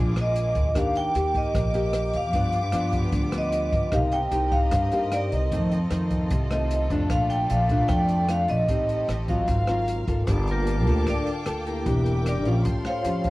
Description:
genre	bossa nova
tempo	151 BPM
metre	4/4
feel	straight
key	G minor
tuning	A4 = 440 Hz
part	nylon-string guitar	accompaniment	0.0-13.3 s	F2 to A4	-29 LUFS	left 1 dB	cassette tape
part	warm studio violin section	sustained chords	0.0-13.3 s	A3 to D6	-35 LUFS	equal	cassette tape
part	upright bass	bass	0.0-13.3 s	E1 to G2	-26 LUFS	equal	none
part	vibraphone with medium hard mallets	melody	0.2-13.3 s	Bb3 to G5	-26 LUFS	equal	cassette tape
part	open jazz drum kit	drums	0.2-13.3 s	hi-hat, kick drum, rim click	-29 LUFS	equal	none
room	little or no reverb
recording	home recording on cassette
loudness	-21 LUFS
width	side -19 dB against mid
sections	0.0-10.3 A section; 10.3-13.3 B section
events	vibraphone solo 10.3-13.3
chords	0.0 Bb7; 0.8 Ebmaj7; 2.3 G7; 3.9 Cm7; 5.5 F7; 7.1 Bbmaj7; 8.7 Am7b5; 9.5 Ab13; 10.3 Gm9; 11.9 Em7b5; 12.7 A7alt

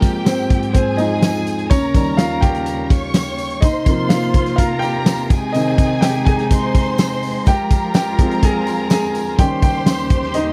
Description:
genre	piano-driven pop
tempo	125 BPM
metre	4/4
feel	straight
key	F minor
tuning	A4 = 440 Hz
part	warm studio violin section	second line	0.0-10.5 s	G4 to Db6	-27 LUFS	equal	none
part	warm grand piano	accompaniment	0.0-10.5 s	C3 to Ab5	-22 LUFS	equal	none
part	muted studio string section	sustained chords	0.0-10.5 s	Eb2 to G4	-27 LUFS	equal	none
part	loose indie drum kit	drums	0.0-10.5 s	hi-hat, kick drum, snare drum	-18 LUFS	equal	none
part	tambourine	percussion	0.0-10.0 s	none	-40 LUFS	equal	none
room	little or no reverb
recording	dry, close 1970s-style studio recording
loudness	-17 LUFS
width	mono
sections	0.0-10.5 A section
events	grand piano solo 0.0-10.5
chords	0.0 Fmadd9; 1.7 Eb7; 3.6 C7sus4; 5.3 Ab/C; 7.5 Fmadd9; 9.4 Eb7

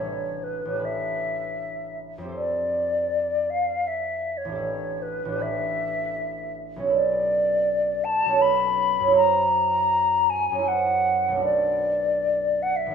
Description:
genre	classical, impressionist duo for flute and harp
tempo	79 BPM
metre	3/4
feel	rubato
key	unclear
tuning	A4 = 442 Hz
part	mellow hollow silver concert flute	melody	0.0-12.9 s	B4 to B5	-23 LUFS	left 2 dB	none
part	concert harp	accompaniment	0.0-12.9 s	G#1 to C5	-27 LUFS	right 5 dB	none
room	moderate concert hall reverb, RT60 1.8 s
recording	minimal, uncompressed stereo recording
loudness	-21 LUFS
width	side -6 dB against mid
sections	0.0-12.9 A section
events	none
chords	0.0 A11; 2.4 F69; 4.6 A9sus4; 6.9 Bm9; 9.2 F#7#11; 11.4 Bm7

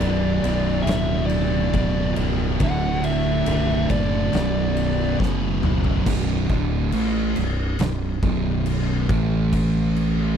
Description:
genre	stoner and doom metal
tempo	69 BPM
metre	4/4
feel	straight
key	B minor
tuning	A4 = 440 Hz
part	fuzz lead guitar	melody	0.0-5.2 s	D5 to F#5	-27 LUFS	left 1 dB	distortion, slapback echo
part	heavy high-gain guitar	riff	0.0-6.0 s	B1 to D3	-32 LUFS	equal	distortion
part	thick fuzz guitar	riff	0.0-10.4 s	B1 to A3	-26 LUFS	left 11 dB	distortion
part	thick fuzz guitar	riff	0.0-10.4 s	B1 to A3	-25 LUFS	right 12 dB	distortion
part	growling fingered electric bass	bass	0.0-10.4 s	B0 to A1	-25 LUFS	equal	overdrive
part	oversized low-tuned drum kit	drums	0.0-10.2 s	crash cymbal, kick drum, ride cymbal, snare drum, toms	-27 LUFS	equal	none
room	little or no reverb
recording	none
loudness	-19 LUFS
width	side -8 dB against mid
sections	0.0-6.1 A section; 6.1-10.4 B section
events	drum fill 5.2-6.1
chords	0.0 Bm; 2.6 D; 4.3 Bm; 9.1 A5

